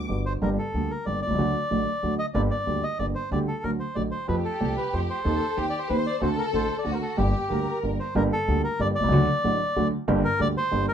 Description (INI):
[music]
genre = tango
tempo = 186 BPM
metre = 3/4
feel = rubato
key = G harmonic minor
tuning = A4 = 440 Hz
[part]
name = rich studio violin section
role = second line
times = 0.0-0.1, 4.3-8.0 s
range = F#4 to C5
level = -30 LUFS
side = left 3 dB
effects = none
[part]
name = warm upright piano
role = accompaniment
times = 0.0-10.9 s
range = G1 to G4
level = -27 LUFS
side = right 2 dB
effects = none
[part]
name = upright bass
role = bass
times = 0.0-10.9 s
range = G1 to F2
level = -29 LUFS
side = equal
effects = none
[part]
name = bandoneon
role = melody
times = 0.3-10.9 s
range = G4 to Eb5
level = -28 LUFS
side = equal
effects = none
[sound]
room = moderate studio ambience, RT60 0.4 s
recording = band playing live in one room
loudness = -23 LUFS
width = side -8 dB against mid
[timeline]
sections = 0.4-8.2 A section; 8.2-10.9 A section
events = none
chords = 0.4 Gm; 1.4 D; 2.3 Gm; 3.3 Dsus4; 3.6 D; 4.3 Fadd9; 5.3 Cm7/Eb; 6.2 D7; 7.2 Gm; 9.1 D; 10.1 Gm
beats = 0.09 | 0.42 0.74 1.06 | 1.39 1.71 2.03 | 2.35 2.67 2.99 | 3.31 3.64 3.96 | 4.29 4.61 4.93 | 5.25 5.58 5.90 | 6.22 6.54 6.86 | 7.18 7.50 7.83 | 8.15 8.47 8.80 | 9.12 9.44 9.76 | 10.08 10.39 10.71